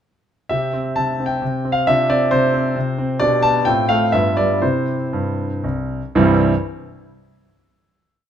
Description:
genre	classical-period piano sonatina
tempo	116-136 BPM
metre	3/4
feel	rubato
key	C major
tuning	A4 = 440 Hz
part	clear concert grand piano	solo	0.5-6.5 s	C2 to A5	-16 LUFS	equal	none
room	light reverb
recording	close, detailed microphones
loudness	-16 LUFS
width	side -9 dB against mid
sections	0.5-6.1 A section; 6.1-7.6 final chord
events	slowing down 2.5-6.1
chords	0.5 C; 1.9 Dm7/C; 3.2 G/B; 3.7 F/A; 4.1 G6; 4.6 C

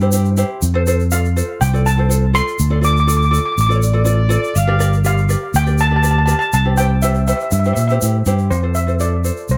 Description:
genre	calypso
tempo	122 BPM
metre	4/4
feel	straight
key	F major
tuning	A4 = 440 Hz
part	ukulele	accompaniment	0.0-9.5 s	E4 to D5	-25 LUFS	equal	none
part	fingered electric bass	bass	0.0-9.6 s	G1 to Bb2	-17 LUFS	equal	none
part	tube shaker	percussion	0.0-9.6 s	none	-30 LUFS	equal	none
part	steel pan	melody	1.1-9.6 s	C5 to D6	-22 LUFS	equal	tape echo
part	mellow horn section	second line	3.7-4.9 s	Db5 to F5	-26 LUFS	equal	tape echo
room	light reverb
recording	none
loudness	-16 LUFS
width	mono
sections	0.0-8.5 A section; 8.5-9.6 B section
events	none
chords	0.0 C; 0.6 F; 2.6 Dm; 4.6 Gm7; 6.5 C; 8.5 F

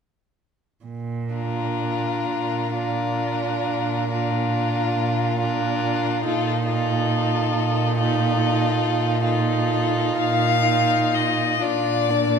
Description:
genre	classical, slow romantic movement for string quartet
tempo	40-48 BPM (dotted quarters)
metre	12/8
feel	rubato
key	Bb major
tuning	A4 = 440 Hz
part	rich cello	bass	0.8-12.4 s	Bb2	-25 LUFS	right 3 dB	none
part	warm viola	accompaniment	1.3-12.4 s	Bb3 to Eb4	-26 LUFS	right 3 dB	none
part	clear violin	melody	1.4-12.4 s	A4 to F5	-26 LUFS	left 7 dB	none
part	warm violin	second line	1.4-12.4 s	D4 to F4	-25 LUFS	left 1 dB	none
room	wet scoring stage reverb, RT60 1.7 s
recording	minimal, uncompressed stereo recording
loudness	-20 LUFS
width	side -6 dB against mid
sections	0.8-11.6 A section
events	none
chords	0.8 Bb; 6.3 F7/Bb; 11.6 Bb

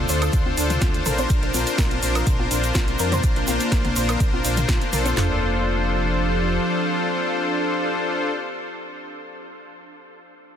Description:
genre	progressive house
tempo	124 BPM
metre	4/4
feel	straight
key	F major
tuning	A4 = 440 Hz
part	evolving wavetable pad	sustained chords	0.0-8.3 s	D3 to A4	-30 LUFS	right 1 dB	phaser, built-in reverb, sidechain pumping
part	soft supersaw	stabs	0.0-8.3 s	D4 to C5	-24 LUFS	left 2 dB	sidechain pumping, digital delay
part	dark detuned saw bass	bass	0.0-6.6 s	F1 to F2	-25 LUFS	equal	sidechain pumping
part	soft round pluck	arpeggios	0.1-5.4 s	D4 to C6	-31 LUFS	right 1 dB	ensemble chorus, sidechain pumping, digital delay
part	deep house drum kit	drums	0.1-5.1 s	hi-hat, snare drum, woodblock	-29 LUFS	equal	overdrive
part	tube shaker	percussion	0.1-5.1 s	none	-32 LUFS	right 3 dB	none
part	deep house drum kit	drums	0.3-5.3 s	handclaps, kick drum, snare drum, toms	-22 LUFS	equal	none
part	electronic congas and toms	percussion	0.5-5.1 s	none	-30 LUFS	left 4 dB	overdrive, sidechain pumping on perc, sidechain pumping on toms
room	light reverb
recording	dense, heavily limited modern master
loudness	-19 LUFS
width	side -9 dB against mid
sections	0.0-5.2 A section; 5.2-9.0 B section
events	drop 0.0-5.2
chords	0.0 Dm7; 1.3 Bbadd9; 5.2 F6

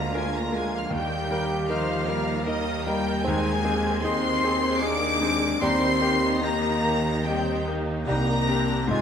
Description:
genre	classical, romantic movement for piano and orchestra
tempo	72-79 BPM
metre	3/4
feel	rubato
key	Eb major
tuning	A4 = 440 Hz
part	clear concert grand piano	melody	0.0-9.0 s	C2 to Bb4	-28 LUFS	left 3 dB	none
part	dark symphonic violin section	melody	0.0-9.0 s	Eb6 to D7	-33 LUFS	left 1 dB	none
part	bright small flute group	second line	0.0-9.0 s	Eb5 to D6	-32 LUFS	left 2 dB	none
part	warm clarinet	second line	0.0-9.0 s	Eb4 to Ab4	-36 LUFS	equal	none
part	warm studio violin section	second line	0.0-9.0 s	Eb5 to D6	-33 LUFS	left 1 dB	none
part	warm bassoon	accompaniment	0.0-9.0 s	G3 to C4	-34 LUFS	right 3 dB	none
part	warm studio viola section	accompaniment	0.0-9.0 s	G3 to C5	-33 LUFS	right 3 dB	none
part	dark French horn section	sustained chords	0.0-9.0 s	Eb3 to D4	-29 LUFS	left 2 dB	none
part	mellow tuba	bass	0.0-9.0 s	Ab1 to Eb2	-34 LUFS	right 5 dB	none
part	warm studio double bass section	bass	0.0-9.0 s	Ab1 to Eb2	-35 LUFS	right 3 dB	none
part	warm symphonic cello section	bass	0.0-9.0 s	Ab2 to Eb3	-35 LUFS	right 3 dB	none
part	timpani	percussion	5.6-6.8 s	none	barely audible	none	none
room	moderate scoring stage reverb, RT60 2.0 s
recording	none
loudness	-22 LUFS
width	side -8 dB against mid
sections	0.0-9.0 A section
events	none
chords	0.0 Bb7/D; 0.9 Eb; 3.2 Ab/Eb; 5.6 Eb; 8.1 Cm7

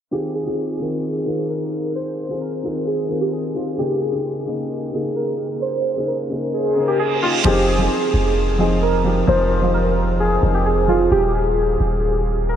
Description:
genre	hip hop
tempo	131 BPM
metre	4/4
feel	half-time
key	F minor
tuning	A4 = 441 Hz
part	warbly lo-fi synth keys	melody	0.1-12.6 s	F4 to C5	-21 LUFS	equal	chorus, phaser, low-pass filter, diffuse ambient delay
part	dark grand piano	accompaniment	0.1-11.1 s	Db3 to Bb4	-22 LUFS	equal	wide subtle chorus, low-pass filter
part	reverse cymbal	sound effects	7.0-7.5 s	none	-27 LUFS	right 3 dB	none
part	long sustained 808-style bass	bass	7.5-12.6 s	Eb1 to F1	-20 LUFS	equal	none
room	wet huge ambient reverb, RT60 8.4 s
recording	dreamy mix soaked in reverb, low-pass filter, lossy compression artefacts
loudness	-17 LUFS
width	side -9 dB against mid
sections	0.1-7.5 A section; 7.5-12.6 B section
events	filter sweep 0.1-7.5, 7.5-12.6; reverse cymbal 7.0-7.5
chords	0.1 Fm7; 3.8 Eb7sus4; 7.5 Fm7; 11.1 Ebsus4

